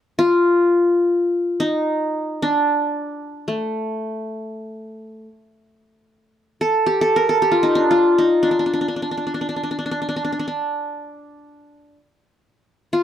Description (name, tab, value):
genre	Turkish makam ensemble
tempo	free time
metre	none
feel	none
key	D makam kurdi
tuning	A4 = 440 Hz
part	qanun	solo	0.2-13.0 s	A3 to Bb4	-18 LUFS	equal	none
room	moderate studio reverb, RT60 0.5 s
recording	none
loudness	-17 LUFS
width	side -10 dB against mid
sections	0.0-13.0 A section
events	none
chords	none